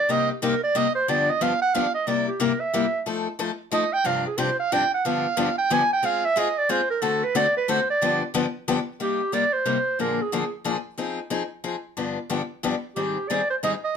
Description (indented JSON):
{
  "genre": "jazz",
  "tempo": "182 BPM",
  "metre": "3/4",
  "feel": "swing 61% on 8ths",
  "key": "C minor",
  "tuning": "A4 = 440 Hz",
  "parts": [
    { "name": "warm clarinet", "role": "melody", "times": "0.0-10.5, 13.0-14.0 s", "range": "G4 to Ab5", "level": "-22 LUFS", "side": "right 3 dB", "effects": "none" },
    { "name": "picked steel-string acoustic guitar", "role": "accompaniment", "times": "0.1-13.7 s", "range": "G2 to A4", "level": "-25 LUFS", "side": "left 6 dB", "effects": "none" }
  ],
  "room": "moderate studio reverb, RT60 0.5 s",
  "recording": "none",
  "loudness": "-22 LUFS",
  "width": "side -7 dB against mid",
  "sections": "0.0-1.1 A section; 1.1-9.0 A section; 9.0-14.0 B section",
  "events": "clarinet solo 0.0-9.0",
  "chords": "0.1 Cm7; 1.1 G7; 2.1 C7; 3.1 F7; 4.1 G7sus4; 5.0 G7; 6.0 Ab6; 7.0 D7; 8.0 G7; 9.0 Cm7; 10.0 Bb7; 11.0 Fm7; 12.0 G7; 13.0 Abmaj7"
}